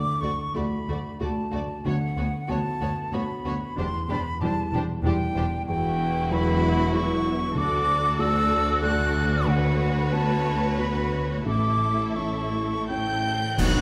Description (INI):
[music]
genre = cinematic, emotional film score for orchestra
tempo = 81-96 BPM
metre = 3/4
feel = rubato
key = B minor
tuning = A4 = 438 Hz
[part]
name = bright silver concert flute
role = second line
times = 0.0-13.8 s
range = F#5 to F#6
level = -31 LUFS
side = equal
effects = none
[part]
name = felt-muted upright piano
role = accompaniment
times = 0.0-13.8 s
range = A1 to D5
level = -32 LUFS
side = equal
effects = none
[part]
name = rich studio violin section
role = melody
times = 0.2-13.8 s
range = B4 to G6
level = -40 LUFS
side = equal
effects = none
[part]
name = rich symphonic violin section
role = second line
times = 0.2-13.8 s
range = F#4 to B4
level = -38 LUFS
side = equal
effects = none
[part]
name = clear symphonic viola section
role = accompaniment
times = 0.2-13.8 s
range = F#3 to F#4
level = -37 LUFS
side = equal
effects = none
[part]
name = clear symphonic cello section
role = bass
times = 0.2-13.8 s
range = D2 to B2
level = -33 LUFS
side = equal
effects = none
[part]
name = rich symphonic double bass section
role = bass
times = 0.2-13.8 s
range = E1 to D2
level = -32 LUFS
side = equal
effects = none
[part]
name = cymbal swell, clash cymbals and concert bass drum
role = percussion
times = 9.5-13.8 s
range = none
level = -34 LUFS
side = equal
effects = none
[part]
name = warm oboe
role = second line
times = 12.9-13.8 s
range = F#5 to G5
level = -34 LUFS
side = equal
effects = none
[part]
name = dark French horn section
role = sustained chords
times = 13.6-13.8 s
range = A3 to D4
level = -36 LUFS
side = equal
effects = none
[part]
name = timpani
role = percussion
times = 13.6-13.8 s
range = B2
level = -30 LUFS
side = equal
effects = none
[sound]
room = wet scoring stage reverb, RT60 1.5 s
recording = none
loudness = -25 LUFS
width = mono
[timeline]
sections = 0.0-13.6 A section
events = band accent 13.6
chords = 0.0 D; 1.9 Bmadd9/D; 3.8 Cadd9/E; 5.7 Emadd9; 7.6 D; 9.5 Bmadd9/D; 11.5 A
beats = 0.56 1.22 | 1.86 2.50 3.14 | 3.78 4.42 5.05 | 5.68 6.31 6.94 | 7.57 8.20 8.83 | 9.47 10.12 10.78 | 11.47 12.17 12.90 | 13.60